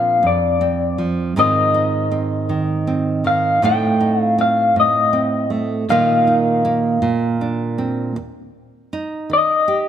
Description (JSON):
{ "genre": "acoustic folk-pop ballad", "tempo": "53 BPM (dotted quarters)", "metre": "6/8", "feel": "straight", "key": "Eb major", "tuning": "A4 = 440 Hz", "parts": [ { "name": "electric guitar through a small old amp", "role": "melody", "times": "0.0-9.9 s", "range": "D5 to G5", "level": "-16 LUFS", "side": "left 2 dB", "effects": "tremolo" }, { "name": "nylon-string guitar", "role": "accompaniment", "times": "0.0-9.9 s", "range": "Eb2 to A4", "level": "-19 LUFS", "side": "right 3 dB", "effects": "none" } ], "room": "moderate scoring stage reverb, RT60 1.9 s", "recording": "none", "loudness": "-15 LUFS", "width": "side -9 dB against mid", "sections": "0.0-8.2 A section; 8.2-9.9 B section", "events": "none", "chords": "0.0 Bbadd9; 1.4 Ab6; 3.6 Am7b5; 5.9 Bbsus4; 7.0 Bbadd9; 8.2 Eb", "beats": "0.23 | 1.36 2.49 | 3.62 4.75 | 5.89 7.03 | 8.17 9.31" }